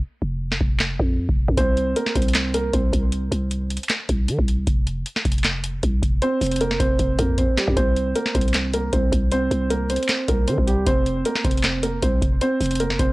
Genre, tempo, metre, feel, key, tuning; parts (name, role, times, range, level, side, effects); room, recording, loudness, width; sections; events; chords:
hip hop, trap; 155 BPM; 4/4; half-time; A4 = 440 Hz
growling 808-style bass; bass; 0.2-13.1 s; F1 to Eb3; -24 LUFS; equal
booming analog drum machine; drums; 0.5-13.1 s; handclaps, hi-hat, kick drum, snare drum; -21 LUFS; equal
dark concert grand piano; melody; 1.6-2.9, 6.2-13.1 s; G3 to C5; -23 LUFS; right 1 dB; low-pass filter, analog delay
little or no reverb; dry, gritty hardware recording, cassette tape; -19 LUFS; side -21 dB against mid
0.0-13.1 A section
break 0.0-1.6; drum fill 7.0-7.8
0.0 F5; 1.6 N.C.; 4.7 F5; 7.8 N.C.; 10.9 F5